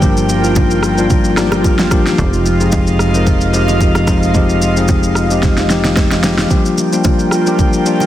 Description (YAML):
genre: amapiano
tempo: 111 BPM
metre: 4/4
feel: swing 55% on 16ths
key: G phrygian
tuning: A4 = 440 Hz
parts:
  - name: bell-like tine electric piano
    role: accompaniment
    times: 0.0-8.1 s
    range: F3 to Bb4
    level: -15 LUFS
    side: left 3 dB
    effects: none
  - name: airy breathy pad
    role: sustained chords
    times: 0.0-8.1 s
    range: F4 to G5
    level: -18 LUFS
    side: right 3 dB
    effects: chorus, sidechain pumping
  - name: plucky analog bass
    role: bass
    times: 0.0-6.5 s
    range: F1 to G1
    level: -18 LUFS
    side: right 1 dB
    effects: none
  - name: deep house drum kit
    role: drums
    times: 0.0-8.1 s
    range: kick drum, rim click, shaker, snare drum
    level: -16 LUFS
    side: right 1 dB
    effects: vintage 12-bit sampler grit, soft clipping on snare
  - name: congas and bongos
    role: percussion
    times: 0.0-8.1 s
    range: none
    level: -23 LUFS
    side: right 4 dB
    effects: none
room: light reverb, digital ambience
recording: dense, heavily limited modern master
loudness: -10 LUFS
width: side -12 dB against mid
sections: 0.0-8.1 A section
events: drum fill 5.4-6.5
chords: 0.0 Gm7; 2.2 Fm7; 6.5 Gm7